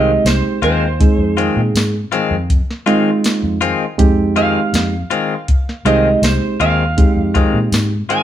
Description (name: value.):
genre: straight-eighth soul blues.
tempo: 80 BPM.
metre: 4/4.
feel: straight.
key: F minor.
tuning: A4 = 442 Hz.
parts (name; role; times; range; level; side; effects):
electric slide guitar; second line; 0.0-8.2 s; C5 to Ab5; -19 LUFS; right 4 dB; none.
bright reed electric piano; accompaniment; 0.0-7.9 s; Ab3 to Ab4; -17 LUFS; right 3 dB; none.
direct-recorded clean electric guitar; stabs; 0.0-8.2 s; Eb3 to F4; -19 LUFS; left 6 dB; none.
vintage muted fingered electric bass; bass; 0.0-8.0 s; C2 to Bb2; -19 LUFS; equal; none.
soft vintage rhythm box; drums; 0.3-8.2 s; hi-hat, kick drum, snare drum, tambourine; -16 LUFS; equal; none.
room: wet studio reverb, RT60 0.8 s.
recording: band playing live in one room.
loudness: -13 LUFS.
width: side -11 dB against mid.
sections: 0.0-8.2 A section.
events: electric slide guitar solo 0.0-8.2.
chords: 0.0 Fm7.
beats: 0.26 | 1.00 1.75 2.50 3.24 | 3.99 4.74 5.48 6.23 | 6.98 7.72.